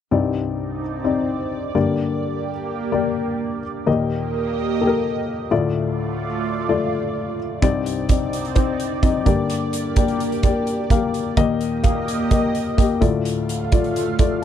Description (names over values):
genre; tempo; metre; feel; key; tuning
piano-driven pop; 128 BPM; 4/4; straight; G minor; A4 = 440 Hz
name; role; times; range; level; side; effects
dark upright piano; accompaniment; 0.1-14.4 s; C2 to F5; -21 LUFS; left 5 dB; none
lush unison pad; sustained chords; 0.6-14.4 s; A3 to F5; -27 LUFS; right 6 dB; chorus, phaser
modern studio drum kit; drums; 7.6-14.3 s; hi-hat, kick drum; -19 LUFS; right 3 dB; none
room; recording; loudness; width
little or no reverb; none; -19 LUFS; side -9 dB against mid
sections
0.1-7.6 A section; 7.6-14.4 B section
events
upright piano fill 14.2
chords
0.1 Cmadd9; 1.8 Gm; 3.9 Eb; 5.5 Dm; 7.6 Cmadd9; 9.3 Gm; 11.4 Eb; 13.0 Dm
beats
| 0.11 0.58 1.05 1.52 | 1.99 2.46 2.93 3.40 | 3.87 4.34 4.81 5.28 | 5.75 6.21 6.68 7.15 | 7.62 8.09 8.56 9.03 | 9.50 9.97 10.44 10.91 | 11.38 11.85 12.32 12.79 | 13.26 13.72 14.19